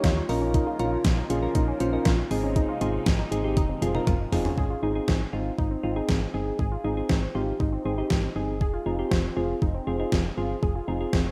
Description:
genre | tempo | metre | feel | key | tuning
synth-pop | 119 BPM | 4/4 | straight | unclear | A4 = 440 Hz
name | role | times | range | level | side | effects
soft electric-piano-like synth keys | accompaniment | 0.0-11.2 s | C4 to C5 | -32 LUFS | equal | chorus
phased analog pad | sustained chords | 0.0-4.6 s | C3 to F4 | -41 LUFS | equal | phaser, chorus
warbly dusty pluck | arpeggios | 0.0-11.3 s | C4 to Ab4 | -35 LUFS | equal | chorus, delay
solid FM bass | bass | 0.0-11.3 s | F1 to Eb2 | -32 LUFS | equal | none
gated 80s digital drum machine | drums | 0.0-11.2 s | hi-hat, kick drum, snare drum, toms | -28 LUFS | equal | gated reverb, gated reverb snare, overdrive
room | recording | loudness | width
moderate lush hall reverb, RT60 1.8 s | rough home demo mix | -26 LUFS | mono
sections
0.0-4.6 A section; 4.6-11.3 B section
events
drum fill 3.6-4.6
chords
0.3 Bbm; 2.3 Abadd9; 3.6 Fm7; 4.6 Ab; 8.6 Fm

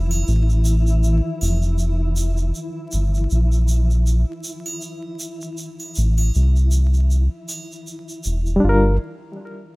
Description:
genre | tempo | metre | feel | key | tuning
trip hop | 79 BPM | 4/4 | swing 57% on 16ths | unclear | A4 = 440 Hz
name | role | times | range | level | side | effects
round analog bass | bass | 0.0-9.0 s | E1 to C2 | -16 LUFS | equal | tube saturation
flickering grainy texture | texture | 0.0-8.6 s | E3 to E4 | -31 LUFS | left 1 dB | built-in reverb
triangle and tube shaker | percussion | 0.1-8.6 s | none | -32 LUFS | right 2 dB | none
reed electric piano | accompaniment | 8.6-9.0 s | G3 to Bb4 | -18 LUFS | equal | tremolo, vintage 12-bit sampler grit
room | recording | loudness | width
digital ambience | rough home demo mix, vinyl crackle | -17 LUFS | side -25 dB against mid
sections
0.0-8.6 A section; 8.6-9.8 B section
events
filter sweep on analog synth bass 0.0-8.6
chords
0.0 F; 2.5 N.C.; 5.6 Am (rootless); 8.6 Gm7

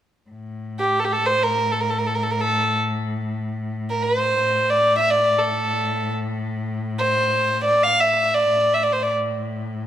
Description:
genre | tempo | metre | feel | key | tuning
arabic | free time | none | none | A maqam kurd | A4 = 439 Hz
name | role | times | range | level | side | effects
rich cello | drone | 0.3-9.9 s | A2 | -28 LUFS | left 2 dB | none
warm violin | melody | 0.8-9.1 s | G4 to F5 | -18 LUFS | right 1 dB | none
room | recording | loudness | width
moderate scoring stage reverb, RT60 1.7 s | none | -18 LUFS | side -11 dB against mid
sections
0.3-9.9 A section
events
none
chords
none

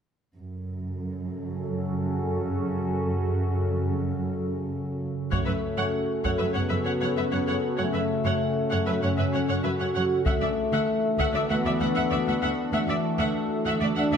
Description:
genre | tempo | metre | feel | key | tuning
cinematic, hybrid orchestral and electronic film score | 97 BPM | 4/4 | straight | unclear | A4 = 440 Hz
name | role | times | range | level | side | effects
dark analog pad | sustained chords | 0.8-14.2 s | C#3 to A4 | -30 LUFS | equal | chorus, phaser, low-pass filter
dark symphonic cello section | bass | 0.4-14.2 s | D2 to F#2 | -30 LUFS | right 2 dB | none
clear studio viola section | accompaniment | 5.3-14.2 s | B4 to F#5 | -30 LUFS | equal | low-pass filter
mellow French horn section | sustained chords | 5.3-14.2 s | A3 to F#4 | -27 LUFS | left 3 dB | low-pass filter
taiko ensemble | drums | 5.3-6.5, 10.3-11.5 s | none | -31 LUFS | right 1 dB | none
room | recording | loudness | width
wet recital hall reverb, RT60 1.4 s | none | -24 LUFS | side -7 dB against mid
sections
0.4-5.3 A section; 5.3-14.2 B section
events
filter sweep 0.4-5.3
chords
0.4 F#m; 10.3 Dadd9

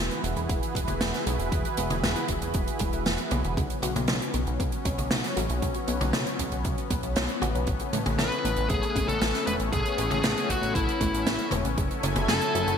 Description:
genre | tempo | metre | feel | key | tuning
synthwave | 117 BPM | 4/4 | straight | E major | A4 = 440 Hz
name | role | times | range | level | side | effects
analog string pad | sustained chords | 0.0-12.8 s | E3 to G#5 | -31 LUFS | left 1 dB | ensemble chorus
analog pluck | arpeggios | 0.0-12.8 s | C#3 to C#5 | -37 LUFS | right 1 dB | none
chorused synth bass | bass | 0.0-12.8 s | E1 to B1 | -30 LUFS | equal | sidechain pumping
swinging big-band drum kit | drums | 0.1-12.8 s | hi-hat, snare drum, toms | -30 LUFS | right 1 dB | small room ambience, gated reverb
electronic kick drum | drums | 0.5-11.9 s | none | -30 LUFS | equal | small room ambience
bluesy overdriven lead guitar | melody | 8.2-12.8 s | E4 to B4 | -29 LUFS | left 1 dB | distortion, ping-pong delay
room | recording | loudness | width
moderate plate reverb, RT60 2.6 s | bright 1980s-style digital production | -24 LUFS | side -7 dB against mid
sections
0.0-12.8 A section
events
none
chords
0.0 Eadd9; 3.6 Bsus2; 7.7 Aadd9; 11.8 F#m7

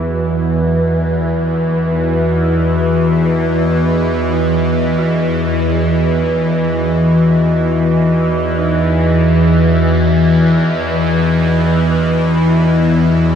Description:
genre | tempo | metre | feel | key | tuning
dark ambient drone | free time | none | none | unclear | A4 = 439 Hz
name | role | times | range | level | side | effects
dark analog pad | sustained chords | 0.0-13.4 s | E3 to D#5 | -15 LUFS | left 1 dB | lush chorus
dark detuned synth bell | arpeggios | 0.0-13.4 s | D#4 to A4 | -32 LUFS | right 2 dB | none
bowed-like drone | drone | 0.0-13.4 s | E2 to E3 | -14 LUFS | equal | built-in reverb, phaser
room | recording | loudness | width
wet huge ambient reverb, RT60 7.6 s | dark, warm production | -12 LUFS | side -8 dB against mid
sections
0.0-13.4 A section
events
none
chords
0.0 Esus2

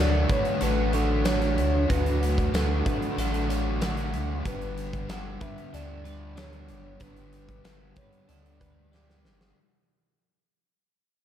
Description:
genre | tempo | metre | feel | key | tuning
rock, shoegaze and dream pop | 94 BPM | 4/4 | straight | unclear | A4 = 440 Hz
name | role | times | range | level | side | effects
hollow clarinet-like synth lead | melody | 0.0-9.2 s | A4 to F#5 | -33 LUFS | left 1 dB | chorus, analog delay
twelve-string electric guitar | arpeggios | 0.0-9.6 s | D4 to D5 | -35 LUFS | right 5 dB | analog chorus, analog delay
crunchy overdriven guitar | riff | 0.0-9.6 s | G2 to G4 | -34 LUFS | right 12 dB | reverse reverb
thick fuzz guitar | riff | 0.0-9.6 s | G2 to D4 | -32 LUFS | left 12 dB | distortion, lush chorus
warm sub bass | bass | 0.0-9.5 s | G1 to D2 | -28 LUFS | equal | none
huge arena drum kit | drums | 0.3-9.6 s | hi-hat, kick drum, snare drum | -31 LUFS | equal | none
tambourine | percussion | 1.3-9.1 s | none | -48 LUFS | left 14 dB | none
room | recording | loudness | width
light reverb, small room ambience | none | -24 LUFS | side -10 dB against mid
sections
0.0-9.6 A section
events
fade-out 0.0-9.6; drum fill 8.9-9.6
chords
0.0 Dmaj7; 4.5 G

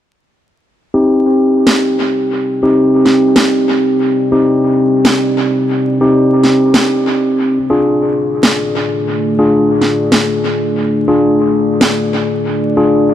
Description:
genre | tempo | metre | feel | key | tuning
deep dubstep | 142 BPM | 4/4 | swing 56% on 16ths, half-time | C minor | A4 = 444 Hz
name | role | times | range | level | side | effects
deep dark ambient pad | sustained chords | 1.9-13.1 s | A3 to D5 | -18 LUFS | right 1 dB | chorus, built-in reverb, vintage 12-bit sampler grit
mellow tine electric piano | stabs | 0.9-13.1 s | C4 to Ab4 | -12 LUFS | left 1 dB | low-pass filter, dub echo
electronic snare drum | drums | 1.7-11.9 s | none | -16 LUFS | equal | dub echo
room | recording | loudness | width
moderate echo chamber reverb, RT60 1.6 s | echo-heavy mix, vinyl crackle | -10 LUFS | side -10 dB against mid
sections
0.8-13.1 A section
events
filter sweep on tine electric piano 0.8-13.1; filter sweep on ambient pad 0.8-13.1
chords
0.8 Cm; 7.6 Ddim

